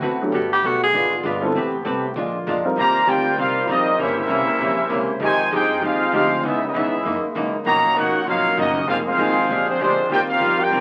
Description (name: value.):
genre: jazz.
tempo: 196 BPM.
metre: 4/4.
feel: swing 62% on 8ths.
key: Eb major.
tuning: A4 = 441 Hz.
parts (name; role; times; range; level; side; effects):
archtop guitar, miked and amplified; accompaniment; 0.0-10.8 s; Gb2 to B4; -26 LUFS; equal; none.
bright trombone section; sustained chords; 0.0-10.8 s; C3 to C5; -31 LUFS; equal; none.
upright bass; bass; 0.0-10.8 s; F1 to G2; -35 LUFS; equal; none.
dark upright piano; accompaniment; 0.2-2.8 s; F#3 to Bb4; -25 LUFS; equal; none.
clear tenor saxophone; melody; 0.5-1.2 s; F#4 to Ab4; -20 LUFS; equal; none.
clear trumpet section; melody; 2.8-10.8 s; Ab3 to Bb5; -22 LUFS; equal; none.
brilliant trombone section; second line; 2.8-10.8 s; C3 to Ab4; -26 LUFS; equal; none.
room: wet studio reverb, RT60 0.5 s.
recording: very old 78 rpm record, vinyl crackle.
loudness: -20 LUFS.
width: mono.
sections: 0.0-2.8 A section; 2.8-10.8 B section.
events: tenor saxophone solo 0.0-2.8.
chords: 0.3 Gmaj9; 0.9 G#dim7; 1.5 Am9; 2.2 Bb7; 2.8 Eb69; 4.0 C7b9; 5.2 Fm9; 6.4 Dbm9; 7.0 Gb13; 7.7 Bmaj9#11; 8.9 Fm7; 9.5 Bb13; 10.1 Eb69.